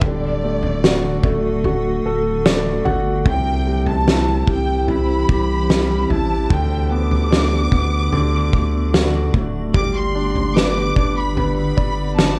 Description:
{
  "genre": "pop ballad",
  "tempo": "74 BPM",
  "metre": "4/4",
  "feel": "straight",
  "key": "G major",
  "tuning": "A4 = 441 Hz",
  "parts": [
    { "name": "warm studio violin section", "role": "melody", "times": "0.0-12.4 s", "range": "D5 to D6", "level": "-28 LUFS", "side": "equal", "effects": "tape echo" },
    { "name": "clear concert grand piano", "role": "accompaniment", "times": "0.0-12.4 s", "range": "C3 to F#5", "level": "-24 LUFS", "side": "equal", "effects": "none" },
    { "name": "granular cloud pad", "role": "sustained chords", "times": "0.1-12.4 s", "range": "D3 to D5", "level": "-29 LUFS", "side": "equal", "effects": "built-in reverb" },
    { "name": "saturated sub bass", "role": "bass", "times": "0.0-12.4 s", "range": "D1 to D2", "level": "-24 LUFS", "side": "equal", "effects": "none" },
    { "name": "loose indie drum kit", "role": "drums", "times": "0.0-12.4 s", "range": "kick drum, snare drum, toms", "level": "-22 LUFS", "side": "equal", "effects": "none" }
  ],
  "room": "little or no reverb",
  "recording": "cassette tape",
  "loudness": "-18 LUFS",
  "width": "mono",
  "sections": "0.0-12.4 A section",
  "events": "grand piano fill 2.0-3.3",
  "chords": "0.0 D; 3.3 C; 6.5 G/D; 8.1 D; 9.7 G"
}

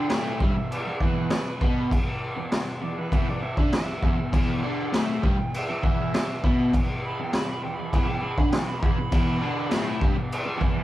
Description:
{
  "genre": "garage rock duo or trio",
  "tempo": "100 BPM",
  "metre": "4/4",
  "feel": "straight",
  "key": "unclear",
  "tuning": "A4 = 440 Hz",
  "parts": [
    { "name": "mellow harmonica", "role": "melody", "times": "0.0-10.0 s", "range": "B4 to B5", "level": "-35 LUFS", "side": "right 3 dB", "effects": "overdrive" },
    { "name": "crunchy overdriven guitar", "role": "riff", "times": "0.0-10.8 s", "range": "E2 to D4", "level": "-28 LUFS", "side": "equal", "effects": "none" },
    { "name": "raw garage drum kit", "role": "drums", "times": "0.1-10.8 s", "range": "crash cymbal, kick drum, snare drum", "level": "-24 LUFS", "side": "equal", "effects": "none" }
  ],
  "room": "light reverb",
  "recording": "band playing live in one room",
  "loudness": "-22 LUFS",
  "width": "side -15 dB against mid",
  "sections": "0.0-10.8 A section",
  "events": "none",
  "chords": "0.0 E5"
}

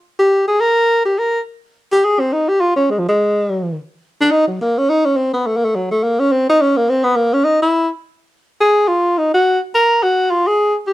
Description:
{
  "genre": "jazz",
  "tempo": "210 BPM",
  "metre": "4/4",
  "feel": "swing 60% on 8ths",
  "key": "unclear",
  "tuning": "A4 = 440 Hz",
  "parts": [
    { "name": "breathy tenor saxophone", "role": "solo", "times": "0.2-10.9 s", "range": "F3 to Bb4", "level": "-13 LUFS", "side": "equal", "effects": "none" }
  ],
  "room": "moderate studio reverb, RT60 0.6 s",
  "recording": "dark, warm production",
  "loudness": "-13 LUFS",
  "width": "side -16 dB against mid",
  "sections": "0.0-1.4 A section; 1.4-10.6 B section",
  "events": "tenor saxophone solo 1.4-10.9",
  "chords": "none"
}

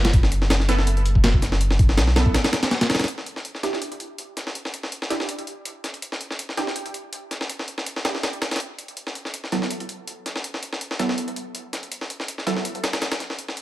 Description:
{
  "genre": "drum and bass, jungle",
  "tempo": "163 BPM",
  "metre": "4/4",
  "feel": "swing 54% on 16ths",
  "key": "E minor",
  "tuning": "A4 = 444 Hz",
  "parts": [
    { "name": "soft dub sub bass", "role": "bass", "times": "0.0-2.3 s", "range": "F#1 to B1", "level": "-20 LUFS", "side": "equal", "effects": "none" },
    { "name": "breakbeat sampler-style drum kit", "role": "drums", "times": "0.0-13.6 s", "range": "hi-hat, kick drum, snare drum", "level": "-23 LUFS", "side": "equal", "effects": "high-pass filter on snare, high-pass filter on hats, high-pass filter on kick" },
    { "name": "orchestra-hit-like synth stab", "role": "stabs", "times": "0.7-12.5 s", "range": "F#3 to A4", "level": "-29 LUFS", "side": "right 3 dB", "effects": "built-in reverb, dub echo" }
  ],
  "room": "little or no reverb",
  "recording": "none",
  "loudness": "-22 LUFS",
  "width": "side -16 dB against mid",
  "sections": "0.0-3.1 A section; 3.1-13.6 B section",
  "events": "drop 0.0-3.1; break 2.3-3.1",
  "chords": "0.0 B5/F#; 3.1 Em7; 9.0 B7sus4/F#"
}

